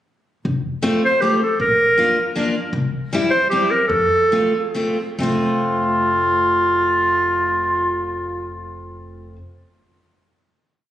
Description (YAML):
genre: alpine folk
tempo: 130-159 BPM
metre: 3/4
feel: swing 53% on 8ths, rubato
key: F major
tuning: A4 = 443 Hz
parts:
  - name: upright bass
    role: bass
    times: 0.5-9.4 s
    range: F1 to F2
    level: -26 LUFS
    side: left 1 dB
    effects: none
  - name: picked steel-string acoustic guitar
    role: accompaniment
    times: 0.8-9.4 s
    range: G3 to F4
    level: -23 LUFS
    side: left 1 dB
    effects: none
  - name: clear clarinet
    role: melody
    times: 1.1-8.7 s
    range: F4 to C5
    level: -17 LUFS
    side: equal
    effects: tape echo
room: wet recital hall reverb, RT60 1.6 s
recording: recorded on a phone in the room, club reverb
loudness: -16 LUFS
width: side -12 dB against mid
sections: 0.4-5.2 A section; 5.2-7.9 final chord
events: slowing down 2.7-5.2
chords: 0.4 F; 1.6 Bb; 2.7 C; 3.9 F